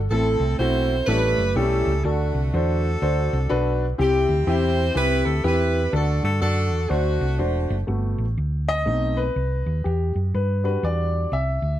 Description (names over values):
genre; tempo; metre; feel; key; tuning
uptempo gospel; 123 BPM; 4/4; swing 62% on 8ths; unclear; A4 = 441 Hz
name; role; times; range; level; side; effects
hollow-body short-scale fingered electric bass; bass; 0.0-11.8 s; E1 to G2; -23 LUFS; equal; none
warm saxophone section; melody; 0.1-7.8 s; A3 to C5; -25 LUFS; right 1 dB; none
warm upright piano; accompaniment; 0.1-11.8 s; A2 to E5; -25 LUFS; left 1 dB; none
room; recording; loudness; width
small room ambience; none; -20 LUFS; side -12 dB against mid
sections
0.0-7.9 A section; 7.9-11.8 B section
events
upright piano solo 7.9-11.8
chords
0.1 Am; 1.1 A7; 2.0 D; 4.0 C; 5.9 D; 7.9 Gmaj9; 8.9 B7b9; 9.9 Em9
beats
| 0.11 0.59 1.08 1.56 | 2.05 2.54 3.02 3.51 | 4.00 4.48 4.97 5.46 | 5.94 6.43 6.92 7.41 | 7.89 8.38 8.87 9.36 | 9.85 10.34 10.83 11.32